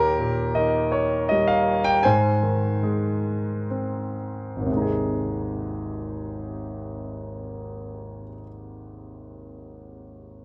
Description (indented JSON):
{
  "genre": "classical, lyrical solo piano",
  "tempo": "57-82 BPM",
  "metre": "3/4",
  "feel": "rubato",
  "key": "Ab major",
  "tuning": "A4 = 442 Hz",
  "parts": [
    { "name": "clear concert grand piano", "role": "solo", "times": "0.0-10.4 s", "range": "Ab1 to Ab5", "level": "-26 LUFS", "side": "equal", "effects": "none" }
  ],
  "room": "light reverb",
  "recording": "none",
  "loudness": "-24 LUFS",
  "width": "mono",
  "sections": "0.0-4.7 A section; 4.7-10.4 B section",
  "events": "slowing down 0.0-4.7",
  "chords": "0.0 Eb; 2.0 Ab"
}